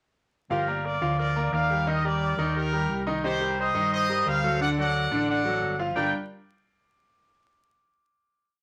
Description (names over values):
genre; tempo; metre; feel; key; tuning
latin; 176 BPM; 4/4; straight; G minor; A4 = 440 Hz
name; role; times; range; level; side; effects
bright horn section; melody; 0.5-6.1 s; G4 to G5; -29 LUFS; equal; none
bright concert grand piano; accompaniment; 0.5-6.1 s; D3 to F5; -31 LUFS; equal; none
fingered electric bass; bass; 0.5-6.1 s; G1 to G2; -32 LUFS; equal; none
room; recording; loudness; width
wet studio reverb, RT60 0.6 s; vinyl crackle; -26 LUFS; mono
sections
0.5-6.0 mambo (horn riffs); 6.0-7.3 final chord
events
none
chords
0.5 Gm7; 1.9 Ebmaj7; 3.2 Cm7; 4.6 D; 6.0 Gm7